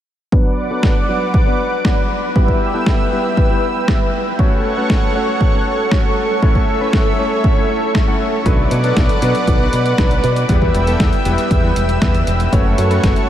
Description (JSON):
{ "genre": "italo disco", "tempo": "118 BPM", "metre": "4/4", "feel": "straight", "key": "B minor", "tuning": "A4 = 442 Hz", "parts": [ { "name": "lush unison pad", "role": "sustained chords", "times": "0.3-13.3 s", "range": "A4 to E6", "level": "-19 LUFS", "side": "equal", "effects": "chorus" }, { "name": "clear electric grand piano", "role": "stabs", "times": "0.3-13.3 s", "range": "F#3 to F#5", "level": "-22 LUFS", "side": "equal", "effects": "analog chorus, low-pass filter, tape echo" }, { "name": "electronic kick drum", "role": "drums", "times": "0.3-13.1 s", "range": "none", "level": "-16 LUFS", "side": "equal", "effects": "studio reverb" }, { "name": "detuned 8-bit digital drum machine", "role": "drums", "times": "0.8-13.3 s", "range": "hi-hat, snare drum", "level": "-23 LUFS", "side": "equal", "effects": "studio reverb" }, { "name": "fingered electric bass with an envelope filter", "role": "bass", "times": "8.5-13.1 s", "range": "E1 to B2", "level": "-18 LUFS", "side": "equal", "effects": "tape echo" } ], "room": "moderate huge ambient reverb, RT60 8.0 s", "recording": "dreamy mix soaked in reverb", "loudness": "-13 LUFS", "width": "side -11 dB against mid", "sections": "0.3-13.3 A section", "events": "filter sweep on electric grand piano 0.3-13.3", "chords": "0.3 Bm; 2.4 Em; 4.4 F#m; 6.4 A; 8.5 Bm; 10.5 Em; 12.5 F#m" }